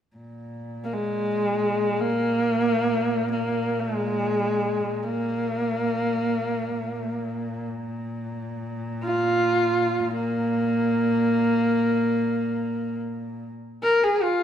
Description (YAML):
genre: mongolian traditional, Mongolian folk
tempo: free time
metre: none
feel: none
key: unclear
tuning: A4 = 440 Hz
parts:
  - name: warm cello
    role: drone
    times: 0.2-13.5 s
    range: Bb2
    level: -31 LUFS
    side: right 1 dB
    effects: none
  - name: rich horsehead fiddle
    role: melody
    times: 0.8-14.4 s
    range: Ab3 to Bb4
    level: -22 LUFS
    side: equal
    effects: none
room: wet scoring stage reverb, RT60 1.9 s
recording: none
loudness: -22 LUFS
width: side -9 dB against mid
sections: 0.2-13.4 A section; 13.4-14.4 B section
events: none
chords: none